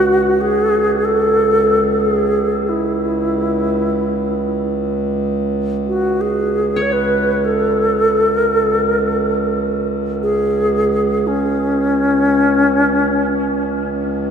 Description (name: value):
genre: world meditative, free-time meditation music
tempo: free time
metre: none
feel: none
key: C# minor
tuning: A4 = 441 Hz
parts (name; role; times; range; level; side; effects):
- bright wooden-headed alto flute; melody; 0.0-14.0 s; C#4 to C#5; -16 LUFS; equal; tape echo
- hand-pumped harmonium; drone; 0.0-14.3 s; C#2; -19 LUFS; right 2 dB; stereo widening
- qanun; texture; 6.8-14.3 s; C#5; -29 LUFS; left 2 dB; none
room: wet cathedral reverb, RT60 5.2 s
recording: in a vast, echoing space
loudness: -14 LUFS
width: side -7 dB against mid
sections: 0.0-14.3 A section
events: none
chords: none